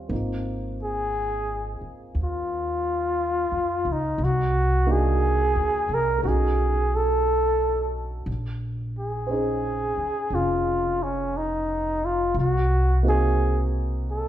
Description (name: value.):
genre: jazz ballad.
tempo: 59 BPM.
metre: 4/4.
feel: swing 67% on 8ths.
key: Bb minor.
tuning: A4 = 440 Hz.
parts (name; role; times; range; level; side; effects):
dark upright piano; accompaniment; 0.0-14.3 s; G3 to C5; -31 LUFS; right 3 dB; none.
upright bass; bass; 0.0-14.3 s; F1 to F2; -26 LUFS; equal; none.
trumpet with bucket mute; melody; 0.8-14.3 s; Db4 to Bb4; -24 LUFS; equal; none.
room: moderate recital hall reverb, RT60 1.6 s.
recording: recorded in a church or concert hall.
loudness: -22 LUFS.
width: side -11 dB against mid.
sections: 0.0-14.3 A section.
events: none.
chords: 0.1 Ab69; 4.2 Cm7b5; 6.2 B9; 8.3 Bbm11; 12.4 Cm7b5.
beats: | 0.11 1.14 2.16 3.18 | 4.20 5.22 6.24 7.25 | 8.27 9.29 10.31 11.33 | 12.35 13.37.